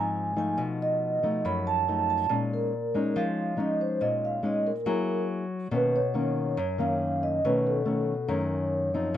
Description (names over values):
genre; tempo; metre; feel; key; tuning
bossa nova; 140 BPM; 4/4; straight; unclear; A4 = 440 Hz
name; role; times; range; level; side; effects
vibraphone with soft mallets; melody; 0.0-8.3 s; A4 to B5; -28 LUFS; right 2 dB; none
nylon-string guitar; accompaniment; 0.0-9.2 s; F#2 to Ab4; -28 LUFS; left 2 dB; none
room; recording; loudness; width
moderate studio reverb, RT60 0.6 s; dark, warm production; -25 LUFS; side -11 dB against mid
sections
0.0-5.7 A section; 5.7-9.2 B section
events
none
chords
0.0 Dbmaj9 (rootless); 0.6 B7#11; 2.3 Bbm7; 4.9 Gb9; 5.7 Bmaj9; 7.4 B9